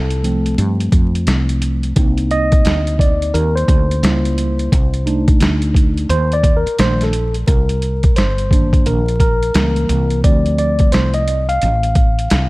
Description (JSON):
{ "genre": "hip hop, jazz-hop", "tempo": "87 BPM", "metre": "4/4", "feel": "swing 62% on 16ths", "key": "C dorian", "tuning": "A4 = 440 Hz", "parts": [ { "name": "mellow tine electric piano", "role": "accompaniment", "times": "0.0-12.5 s", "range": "Eb3 to F5", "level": "-18 LUFS", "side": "equal", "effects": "medium stereo tremolo" }, { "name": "woody fretless electric bass", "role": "bass", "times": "0.0-12.5 s", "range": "G1 to G2", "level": "-17 LUFS", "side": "equal", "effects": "none" }, { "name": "boom bap sampler-style drum kit", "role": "drums", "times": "0.1-12.5 s", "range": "hi-hat, kick drum, snare drum", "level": "-15 LUFS", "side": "equal", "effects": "none" } ], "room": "little or no reverb", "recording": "vinyl crackle", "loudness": "-13 LUFS", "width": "side -21 dB against mid", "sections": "0.0-7.5 A section; 7.5-12.5 B section", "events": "tine electric piano solo 0.0-7.5, 7.5-12.5", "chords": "0.0 Dm7 (rootless); 2.0 Cm9; 4.0 C#dim7; 4.7 Cm69; 7.5 Cm9; 9.5 C#dim7; 10.2 Dm7" }